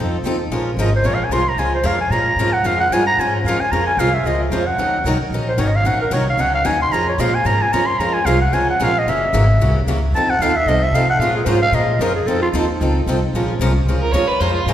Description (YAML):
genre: acoustic string swing (jazz manouche)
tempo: 224 BPM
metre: 4/4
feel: swing 57% on 8ths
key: Bb minor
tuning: A4 = 440 Hz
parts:
  - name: picked steel-string acoustic guitar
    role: accompaniment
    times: 0.0-14.7 s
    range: Eb3 to Bb4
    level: -24 LUFS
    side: right 4 dB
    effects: none
  - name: picked swing-style acoustic guitar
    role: accompaniment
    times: 0.0-14.7 s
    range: Db3 to Bb4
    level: -23 LUFS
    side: left 3 dB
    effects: none
  - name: upright bass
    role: bass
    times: 0.0-14.7 s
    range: Gb1 to C3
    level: -20 LUFS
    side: equal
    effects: none
  - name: growling clarinet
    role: melody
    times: 0.8-12.5 s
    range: F4 to C6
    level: -18 LUFS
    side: equal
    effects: none
  - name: warm violin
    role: second line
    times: 14.0-14.7 s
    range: F4 to Db5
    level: -18 LUFS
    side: right 3 dB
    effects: none
room: wet scoring stage reverb, RT60 1.8 s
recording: recorded in a church or concert hall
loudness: -15 LUFS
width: side -11 dB against mid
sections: 0.5-13.3 A section; 13.3-14.7 A section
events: clarinet solo 0.0-13.3; violin solo 13.3-14.7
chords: 0.0 F7; 0.5 Bbm7; 4.8 Ebm7; 6.9 Bbm7; 9.1 Gb7; 10.1 F7; 11.2 Bbm7; 12.3 F7; 13.3 Bbm7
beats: 0.24 | 0.51 0.78 1.04 1.31 | 1.58 1.85 2.12 2.38 | 2.65 2.92 3.19 3.45 | 3.72 3.99 4.25 4.52 | 4.79 5.06 5.33 5.59 | 5.86 6.13 6.39 6.66 | 6.93 7.20 7.46 7.73 | 8.00 8.27 8.53 8.80 | 9.07 9.33 9.60 9.87 | 10.13 10.40 10.67 10.94 | 11.20 11.47 11.74 12.00 | 12.27 12.54 12.80 13.07 | 13.34 13.61 13.87 14.14 | 14.41 14.67